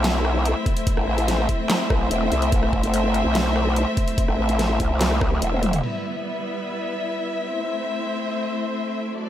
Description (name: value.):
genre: heavy wobble dubstep.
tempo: 145 BPM.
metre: 4/4.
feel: half-time.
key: unclear.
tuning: A4 = 440 Hz.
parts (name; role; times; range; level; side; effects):
clear chamber string section; sustained chords; 0.0-9.3 s; F#3 to E5; -24 LUFS; left 1 dB; sidechain pumping.
growl bass; bass; 0.0-5.8 s; E1 to C2; -22 LUFS; equal; chorus, overdrive.
dubstep drum kit; drums; 0.0-5.9 s; crash cymbal, handclaps, hi-hat, rim click, snare drum, toms; -27 LUFS; equal; low-pass filter on hats, small room ambience, low-pass filter on cymbals, low-pass filter on snare, low-pass filter on toms.
electronic kick drum; drums; 0.7-5.3 s; none; -23 LUFS; equal; small room ambience.
room: moderate church reverb, RT60 2.9 s.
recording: dreamy mix soaked in reverb.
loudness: -20 LUFS.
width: side -11 dB against mid.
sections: 0.0-5.8 A section; 5.8-9.3 B section.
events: drop 0.0-5.8; drum fill 5.5-5.8.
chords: 0.0 Am; 5.8 Em; 7.5 Am.